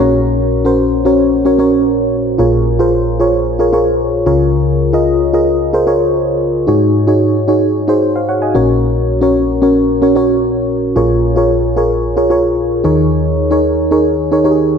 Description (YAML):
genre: pop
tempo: 112 BPM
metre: 4/4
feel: straight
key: unclear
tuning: A4 = 441 Hz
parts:
  - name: mellow FM electric piano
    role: solo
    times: 0.0-14.8 s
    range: Bb1 to Ab5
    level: -10 LUFS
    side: equal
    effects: chorus
room: wet lush hall reverb, RT60 2.6 s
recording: dark, warm production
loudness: -10 LUFS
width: side -6 dB against mid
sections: 0.0-14.8 A section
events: none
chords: 0.0 Gb/Bb; 2.4 Bbm7; 4.3 Db6; 6.7 Ab7sus4; 8.6 Gb/Bb; 11.0 Bbm7; 12.8 Eb7sus4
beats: | 0.25 0.79 1.32 1.86 | 2.40 2.93 3.47 4.00 | 4.54 5.07 5.61 6.14 | 6.68 7.22 7.75 8.29 | 8.82 9.36 9.89 10.43 | 10.97 11.50 12.04 12.57 | 13.11 13.64 14.18 14.72